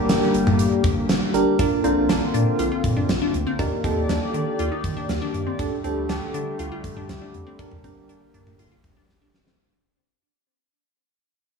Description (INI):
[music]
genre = synth-pop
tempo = 120 BPM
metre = 4/4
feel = straight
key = unclear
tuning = A4 = 435 Hz
[part]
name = FM electric piano with tremolo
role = accompaniment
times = 0.0-8.6 s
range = D4 to Bb4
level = -25 LUFS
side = right 4 dB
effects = none
[part]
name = chorused pulse-width pad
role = sustained chords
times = 0.0-9.6 s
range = D3 to D5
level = -25 LUFS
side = left 4 dB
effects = none
[part]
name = round analog bass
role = bass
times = 0.0-9.5 s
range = G1 to Eb3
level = -28 LUFS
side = right 1 dB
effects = none
[part]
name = gated 80s drum kit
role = drums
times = 0.1-9.6 s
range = hi-hat, kick drum, snare drum, toms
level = -24 LUFS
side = equal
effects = none
[part]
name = resonant blip pluck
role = arpeggios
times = 1.6-9.6 s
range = C4 to F4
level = -30 LUFS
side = left 4 dB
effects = phaser, tape echo
[sound]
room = moderate plate reverb, RT60 1.8 s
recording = dreamy mix soaked in reverb, small room ambience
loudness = -20 LUFS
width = side -5 dB against mid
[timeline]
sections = 0.0-1.6 A section; 1.6-9.6 B section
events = fade-out 1.6-9.6; drum fill 9.1-9.6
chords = 0.0 Gm; 1.6 Bbadd9; 3.6 Ebmaj7; 5.6 Dsus4; 7.6 Gm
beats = 0.09 0.59 1.09 | 1.59 2.09 2.59 3.09 | 3.59 4.09 4.59 5.09 | 5.59 6.09 6.59 7.09 | 7.59 8.09 8.59 9.09